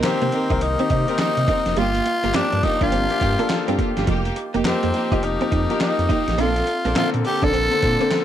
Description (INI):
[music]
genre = R&B, new jack swing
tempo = 104 BPM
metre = 4/4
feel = swing 62% on 16ths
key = C dorian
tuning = A4 = 440 Hz
[part]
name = growling tenor saxophone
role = melody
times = 0.0-8.2 s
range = C4 to A4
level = -22 LUFS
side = equal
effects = analog delay
[part]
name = warm concert grand piano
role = accompaniment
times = 0.0-8.2 s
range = D3 to Bb4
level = -26 LUFS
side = left 7 dB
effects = none
[part]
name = warm studio string section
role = stabs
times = 0.0-8.0 s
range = Bb3 to Bb4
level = -27 LUFS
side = right 4 dB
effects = none
[part]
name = smooth synth bass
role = bass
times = 0.0-8.0 s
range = F1 to C3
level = -25 LUFS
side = equal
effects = none
[part]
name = dusty soul sampler-style drum kit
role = drums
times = 0.0-8.2 s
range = handclaps, hi-hat, kick drum, snare drum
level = -25 LUFS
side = equal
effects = overdrive, gated reverb
[part]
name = direct-recorded clean electric guitar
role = riff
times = 0.2-8.1 s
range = F3 to Eb4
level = -26 LUFS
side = right 4 dB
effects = ensemble chorus
[sound]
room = moderate small room reverb, RT60 0.5 s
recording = none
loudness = -18 LUFS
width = side -10 dB against mid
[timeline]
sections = 0.0-8.2 A section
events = none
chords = 0.0 Cm7; 1.8 Gm7; 4.1 F9sus4; 6.4 Bbmaj9